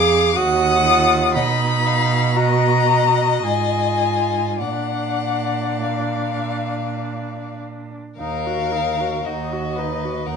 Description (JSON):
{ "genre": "classical, slow romantic movement for string quartet", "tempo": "49-61 BPM", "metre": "3/4", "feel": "rubato", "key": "Eb minor", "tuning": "A4 = 440 Hz", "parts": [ { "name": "warm violin", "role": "melody", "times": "0.0-10.4 s", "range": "Eb5 to Eb6", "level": "-21 LUFS", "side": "left 8 dB", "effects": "none" }, { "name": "clear violin", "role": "second line", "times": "0.0-10.4 s", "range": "Gb4 to Gb5", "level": "-25 LUFS", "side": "equal", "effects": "none" }, { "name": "rich viola", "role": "accompaniment", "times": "0.0-10.4 s", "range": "D4 to Ab4", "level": "-24 LUFS", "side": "right 4 dB", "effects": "none" }, { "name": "rich cello", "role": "bass", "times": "0.0-10.4 s", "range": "Eb2 to B2", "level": "-23 LUFS", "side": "right 5 dB", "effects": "none" } ], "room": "wet stone room reverb, RT60 1.0 s", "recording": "nothing above 11.0 kHz", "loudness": "-17 LUFS", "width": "side -6 dB against mid", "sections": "0.0-8.2 A section; 8.2-10.4 B section", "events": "none", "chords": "0.4 Ebm; 1.4 Bmaj7; 3.4 Fm7/Ab; 4.6 Bb; 8.2 Ebm" }